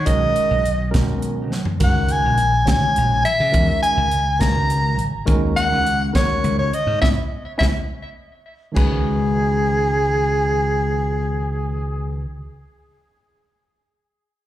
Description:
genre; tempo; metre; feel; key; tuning
electric jazz fusion; 69 BPM (dotted quarters); 6/8; straight; unclear; A4 = 440 Hz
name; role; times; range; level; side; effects
breathy soprano saxophone; melody; 0.0-12.2 s; G#4 to A#5; -20 LUFS; equal; slapback echo, tape echo
slap bass; bass; 0.0-12.2 s; G#1 to C#3; -21 LUFS; equal; none
tine electric piano; accompaniment; 0.1-12.2 s; D#3 to C#5; -26 LUFS; equal; medium stereo tremolo, slapback echo
crisp fusion drum kit; drums; 0.1-8.9 s; china cymbal, hi-hat, kick drum, snare drum, splash cymbal, toms; -21 LUFS; equal; none
room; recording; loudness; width
studio reverb; live gig heard through the venue's PA, club reverb; -17 LUFS; side -13 dB against mid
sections
0.0-8.8 A section; 8.8-12.2 B section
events
drum fill 1.5, 7.9-8.8; band accent 7.0-8.8; tine electric piano fill 7.9-8.8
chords
0.1 Bmaj9; 1.8 C#sus2; 5.3 D#m7; 7.0 C#m7; 8.8 C#9sus4

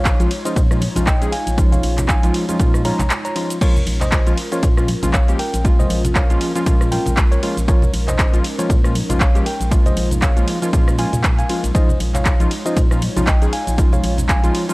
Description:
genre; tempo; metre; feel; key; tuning
deep house; 118 BPM; 4/4; swing 57% on 16ths; Bb minor; A4 = 440 Hz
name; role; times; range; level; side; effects
tine electric piano; melody; 0.0-14.5 s; Bb4 to Bb5; -26 LUFS; equal; vintage 12-bit sampler grit, tape echo
airy breathy pad; sustained chords; 0.0-14.7 s; Ab3 to Db5; -30 LUFS; equal; chorus, sidechain pumping
organ-like FM bass; bass; 0.0-14.5 s; Bb1 to Bb2; -21 LUFS; equal; sidechain pumping
electronic kick drum; drums; 0.1-14.4 s; none; -16 LUFS; equal; none
punchy analog drum machine; drums; 0.1-14.7 s; crash cymbal, handclaps, hi-hat, ride cymbal, rim click, shaker; -25 LUFS; equal; none
warm analog keys; stabs; 0.2-14.7 s; F3 to Ab4; -23 LUFS; equal; chorus, tape echo
congas; percussion; 0.8-14.3 s; none; -26 LUFS; equal; none
room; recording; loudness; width
little or no reverb; dry, gritty hardware recording, vinyl crackle; -14 LUFS; side -22 dB against mid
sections
0.0-14.7 A section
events
break 3.1-3.6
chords
0.0 Dbadd9/Bb; 3.6 Bbm7; 11.7 Dbadd9/Bb

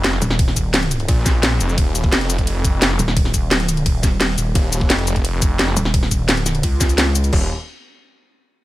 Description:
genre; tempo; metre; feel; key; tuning
dark technical drum and bass; 173 BPM; 4/4; straight; unclear; A4 = 440 Hz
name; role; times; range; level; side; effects
snarling distorted saw bass; bass; 0.0-7.5 s; Eb1 to Bb1; -20 LUFS; equal; distortion, tube saturation, sidechain pumping
drum and bass drum kit; drums; 0.0-7.4 s; cabasa, crash cymbal, hi-hat, ride cymbal, snare drum; -20 LUFS; equal; none
pulsing pluck wobble bass; bass; 0.2-7.3 s; Eb1 to Db2; -19 LUFS; equal; chorus
electronic kick drum; drums; 0.4-7.4 s; none; -18 LUFS; equal; none
room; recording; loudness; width
little or no reverb; none; -15 LUFS; side -16 dB against mid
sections
0.0-7.3 A section; 7.3-8.6 B section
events
drop 0.0-7.3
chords
0.0 Eb5; 7.3 N.C.

